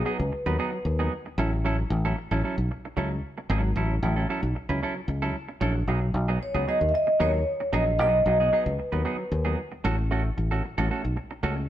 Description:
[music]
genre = disco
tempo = 113 BPM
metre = 4/4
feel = straight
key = unclear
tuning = A4 = 440 Hz
[part]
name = vibraphone with soft mallets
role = melody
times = 0.0-1.1, 6.4-9.5 s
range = B4 to E5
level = -25 LUFS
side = equal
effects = none
[part]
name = semi-hollow electric guitar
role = accompaniment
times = 0.0-11.6 s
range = F#3 to B4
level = -30 LUFS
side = right 3 dB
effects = none
[part]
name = fingered electric bass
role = bass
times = 0.2-11.7 s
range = G#1 to D#2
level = -26 LUFS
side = left 1 dB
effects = none
[sound]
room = moderate stone room reverb, RT60 1.2 s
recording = band playing live in one room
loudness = -24 LUFS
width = side -12 dB against mid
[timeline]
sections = 0.0-11.7 A section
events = none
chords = 0.0 B6; 1.4 A6; 5.9 B6; 9.8 A6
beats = 0.05 0.58 1.11 | 1.64 2.17 2.70 3.23 | 3.76 4.29 4.82 5.34 | 5.87 6.40 6.93 7.46 | 7.99 8.52 9.05 9.58 | 10.11 10.64 11.16

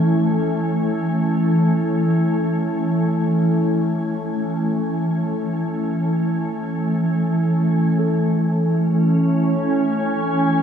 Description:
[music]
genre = ambient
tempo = free time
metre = none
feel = none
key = A major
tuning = A4 = 439 Hz
[part]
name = glassy FM pad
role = sustained chords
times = 0.0-10.6 s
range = E3 to G#5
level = -17 LUFS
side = equal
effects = ensemble chorus, built-in reverb
[part]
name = muted felt-like synth keys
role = arpeggios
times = 8.0-10.6 s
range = A4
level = -33 LUFS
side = left 2 dB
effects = chorus, phaser, diffuse ambient delay
[sound]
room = wet huge ambient reverb, RT60 8.1 s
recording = studio reverb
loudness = -17 LUFS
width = side -8 dB against mid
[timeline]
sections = 0.0-8.0 A section; 8.0-10.6 B section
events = filter sweep on ambient pad 8.0-10.6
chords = 0.0 Amaj7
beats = free time

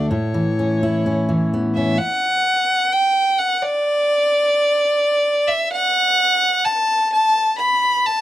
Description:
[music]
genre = folk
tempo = 129 BPM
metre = 4/4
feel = straight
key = unclear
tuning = A4 = 440 Hz
[part]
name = rich fiddle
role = melody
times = 0.0-8.2 s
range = C#5 to B5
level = -16 LUFS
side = equal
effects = none
[part]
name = fingerpicked steel-string acoustic guitar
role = accompaniment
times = 0.0-2.0 s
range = D2 to E4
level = -18 LUFS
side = left 1 dB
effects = none
[sound]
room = small room ambience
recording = dry, close 1970s-style studio recording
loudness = -15 LUFS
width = side -14 dB against mid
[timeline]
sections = 0.0-2.0 A section; 2.0-8.2 B section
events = none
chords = 0.1 Aadd9; 2.0 N.C.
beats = | 0.11 0.58 1.05 1.52 | 1.98 2.45 2.92 3.38 | 3.85 4.32 4.78 5.25 | 5.71 6.18 6.65 7.11 | 7.58 8.04

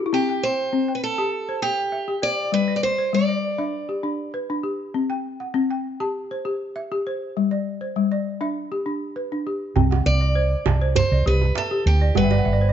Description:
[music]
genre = west african traditional, West African string and xylophone music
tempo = 100 BPM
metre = 4/4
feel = straight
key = C lydian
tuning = A4 = 444 Hz
[part]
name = balafon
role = arpeggios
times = 0.0-12.7 s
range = G3 to A5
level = -24 LUFS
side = left 3 dB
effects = none
[part]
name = picked steel-string acoustic guitar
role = melody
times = 0.1-4.3, 10.1-12.7 s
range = G4 to D5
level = -24 LUFS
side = right 2 dB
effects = none
[part]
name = woody fretless electric bass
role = bass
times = 9.8-12.7 s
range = G1 to D2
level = -19 LUFS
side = right 1 dB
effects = none
[part]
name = djembe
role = percussion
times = 9.8-12.4 s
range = none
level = -24 LUFS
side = right 9 dB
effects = none
[sound]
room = light reverb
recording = dark, warm production, nothing above 7.5 kHz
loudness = -20 LUFS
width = side -9 dB against mid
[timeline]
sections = 0.0-9.8 A section; 9.8-12.7 B section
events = balafon fill 12.2-12.7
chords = 0.1 C; 2.5 G; 4.9 C; 7.4 G; 9.8 C; 12.2 G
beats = | 0.12 0.72 1.33 1.93 | 2.53 3.14 3.74 4.34 | 4.95 5.55 6.15 6.75 | 7.36 7.96 8.56 9.16 | 9.76 10.36 10.96 11.56 | 12.16

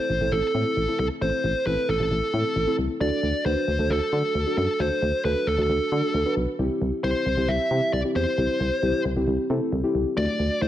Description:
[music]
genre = synth-pop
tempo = 134 BPM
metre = 4/4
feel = straight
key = unclear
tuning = A4 = 440 Hz
[part]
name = fuzz lead guitar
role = melody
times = 0.0-10.7 s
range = A4 to E5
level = -25 LUFS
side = equal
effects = distortion, slapback echo
[part]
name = muted felt-like synth keys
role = accompaniment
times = 0.0-10.7 s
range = A3 to B4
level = -27 LUFS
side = left 1 dB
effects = chorus
[part]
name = solid FM bass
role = bass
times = 0.1-10.7 s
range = A1 to D3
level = -26 LUFS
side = equal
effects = none
[sound]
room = light reverb, digital ambience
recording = none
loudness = -22 LUFS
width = side -12 dB against mid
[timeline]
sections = 0.0-10.7 A section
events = none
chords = 0.0 Am; 3.0 D; 6.6 C; 10.2 D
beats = 0.32 0.77 | 1.22 1.67 2.11 2.56 | 3.01 3.46 3.90 4.35 | 4.80 5.25 5.70 6.14 | 6.59 7.04 7.49 7.93 | 8.38 8.83 9.28 9.73 | 10.17 10.62

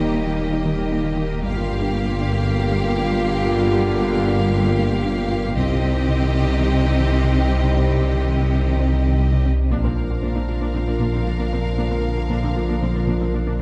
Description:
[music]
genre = cinematic, hybrid orchestral and electronic film score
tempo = 116 BPM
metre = 4/4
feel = straight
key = unclear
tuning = A4 = 441 Hz
[part]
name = rich symphonic violin section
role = melody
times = 0.0-13.6 s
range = Eb5 to F5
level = -34 LUFS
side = equal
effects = none
[part]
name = warm studio violin section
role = second line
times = 0.0-13.6 s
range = G4 to Bb4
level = -33 LUFS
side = equal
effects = none
[part]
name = rich symphonic viola section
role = accompaniment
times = 0.0-13.6 s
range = Bb3 to D4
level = -34 LUFS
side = equal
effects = none
[part]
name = chorused pulse-width pad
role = sustained chords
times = 0.0-13.6 s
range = F3 to Bb4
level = -32 LUFS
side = equal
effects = none
[part]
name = mellow French horn section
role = sustained chords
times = 0.0-13.6 s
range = Bb3 to F4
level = -31 LUFS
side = equal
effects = none
[part]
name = warm trombone section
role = sustained chords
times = 0.0-13.6 s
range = C3 to G3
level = -32 LUFS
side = equal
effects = none
[part]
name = soft round pluck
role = arpeggios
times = 0.0-13.5 s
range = C3 to Bb4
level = -31 LUFS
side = equal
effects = none
[part]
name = mellow tuba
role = bass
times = 0.0-13.6 s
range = G1 to Eb2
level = -29 LUFS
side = equal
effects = none
[part]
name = pure sine sub bass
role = bass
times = 0.0-13.6 s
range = Eb1 to C2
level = -26 LUFS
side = equal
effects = none
[part]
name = rich symphonic cello section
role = bass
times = 0.0-13.6 s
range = Eb2 to C3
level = -30 LUFS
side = equal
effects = none
[part]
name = warm symphonic double bass section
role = bass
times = 0.0-13.6 s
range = G1 to Eb2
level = -30 LUFS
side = equal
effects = none
[sound]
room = wet scoring stage reverb, RT60 1.7 s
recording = heard from further back in the room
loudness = -20 LUFS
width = mono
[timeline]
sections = 0.0-9.7 A section; 9.7-13.6 A section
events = none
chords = 0.0 Eb; 1.4 Gm7; 5.6 Cm; 9.7 Bb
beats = 0.39 0.91 | 1.43 1.95 2.46 2.98 | 3.50 4.01 4.53 5.05 | 5.57 6.08 6.60 7.12 | 7.63 8.15 8.67 9.19 | 9.70 10.22 10.74 11.26 | 11.77 12.29 12.81 13.32

